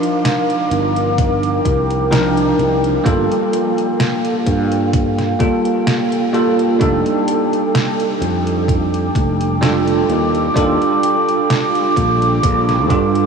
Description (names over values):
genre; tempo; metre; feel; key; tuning
vaporwave; 64 BPM; 4/4; swing 53% on 16ths; G minor; A4 = 444 Hz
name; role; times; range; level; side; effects
bell-like tine electric piano; accompaniment; 0.0-13.3 s; F3 to Bb4; -17 LUFS; right 1 dB; fast stereo tremolo, lush chorus, analog delay
warbly tape-like pad; sustained chords; 0.0-13.3 s; A4 to D6; -20 LUFS; right 1 dB; chorus, built-in reverb, vintage 12-bit sampler grit
detuned 8-bit digital drum machine; drums; 0.0-13.3 s; hi-hat, snare drum; -24 LUFS; equal; overdrive
sustaining fretless electric bass; bass; 0.7-13.3 s; F1 to G2; -19 LUFS; right 1 dB; none
electronic kick drum; drums; 1.2-13.1 s; none; -18 LUFS; equal; overdrive
room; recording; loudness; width
wet huge ambient reverb, RT60 7.5 s; dreamy mix soaked in reverb, cassette tape; -14 LUFS; side -6 dB against mid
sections
0.0-13.3 A section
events
none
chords
0.0 Cm11; 3.1 Gm9; 6.8 F13; 10.1 Ebmaj9#11